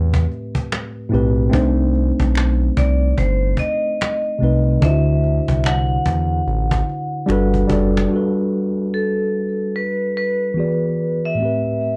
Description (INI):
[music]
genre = lo-fi hip hop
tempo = 73 BPM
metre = 4/4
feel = swing 61% on 16ths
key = G major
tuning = A4 = 436 Hz
[part]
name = mellow tine electric piano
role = accompaniment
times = 0.0-12.0 s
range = A2 to D5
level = -23 LUFS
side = equal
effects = low-pass filter
[part]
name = smooth gliding synth bass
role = bass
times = 0.0-8.1 s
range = F#1 to E2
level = -20 LUFS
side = equal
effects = none
[part]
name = cajon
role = drums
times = 0.1-8.1 s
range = none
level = -26 LUFS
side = equal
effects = vintage 12-bit sampler grit
[part]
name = finger snap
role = percussion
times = 0.7-7.5 s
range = none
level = -36 LUFS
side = equal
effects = none
[part]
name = vibraphone with hard mallets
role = melody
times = 2.8-12.0 s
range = A4 to F#5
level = -25 LUFS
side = equal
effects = low-pass filter
[sound]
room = light reverb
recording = dark, warm production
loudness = -19 LUFS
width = mono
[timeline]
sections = 0.0-8.1 A section; 8.1-12.0 B section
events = drum fill 7.3-8.1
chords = 0.0 Am9; 1.5 Cm6; 4.8 D9; 7.3 Gmaj9; 10.6 E7; 11.4 Am9